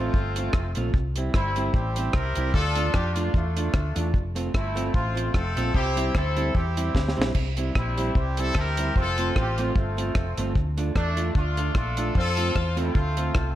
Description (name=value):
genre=ska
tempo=150 BPM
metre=4/4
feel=swing 55% on 8ths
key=C mixolydian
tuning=A4 = 440 Hz
part: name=clear horn section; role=melody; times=0.0-13.5 s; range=G3 to Bb4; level=-28 LUFS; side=left 1 dB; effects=slapback echo
part: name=hollow-body jazz guitar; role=accompaniment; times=0.0-13.4 s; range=G3 to F4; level=-31 LUFS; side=right 3 dB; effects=slapback echo
part: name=hollow-body short-scale fingered electric bass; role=bass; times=0.0-13.5 s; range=F1 to F2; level=-27 LUFS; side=equal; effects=none
part: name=deep reggae drum kit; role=drums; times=0.1-13.5 s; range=crash cymbal, hi-hat, kick drum, rim click, snare drum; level=-25 LUFS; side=equal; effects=none
room=light reverb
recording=none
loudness=-22 LUFS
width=side -13 dB against mid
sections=0.0-7.3 A section; 7.3-13.6 A section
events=drum fill 6.9-7.3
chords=0.0 F; 0.9 C; 2.5 Dm; 4.1 F; 5.7 C; 9.0 F; 10.6 Dm; 12.2 F